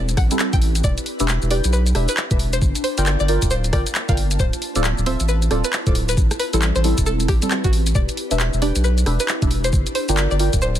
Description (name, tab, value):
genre	UK garage, two-step garage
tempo	135 BPM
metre	4/4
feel	swing 62% on 16ths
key	E phrygian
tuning	A4 = 439 Hz
part	string-like resonator pluck	melody	0.0-10.8 s	F#4 to G5	-27 LUFS	left 1 dB	chorus, dub echo
part	ethereal airy pad	sustained chords	0.0-10.8 s	Bb3 to A5	-30 LUFS	right 1 dB	ensemble chorus, built-in reverb, phaser, sidechain pumping
part	deep mellow chord stab	stabs	0.0-10.8 s	G3 to G5	-25 LUFS	right 1 dB	chorus, phaser, dub echo
part	saturated sub bass	bass	0.0-10.8 s	D1 to B1	-20 LUFS	equal	none
part	garage drum kit	drums	0.1-10.8 s	handclaps, hi-hat, rim click, shaker	-25 LUFS	left 1 dB	none
part	electronic kick drum	drums	0.2-10.6 s	none	-20 LUFS	equal	none
room	little or no reverb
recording	dense, heavily limited modern master, vinyl crackle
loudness	-17 LUFS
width	side -11 dB against mid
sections	0.0-10.8 A section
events	none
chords	0.0 Am7; 0.8 Em7; 2.6 Gm7; 4.4 Dm7; 6.2 Am7; 8.0 Em7; 9.7 Gm7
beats	0.40 | 0.84 1.28 1.73 2.17 | 2.62 3.06 3.51 3.95 | 4.39 4.84 5.28 5.73 | 6.17 6.62 7.06 7.51 | 7.95 8.39 8.84 9.28 | 9.73 10.17 10.62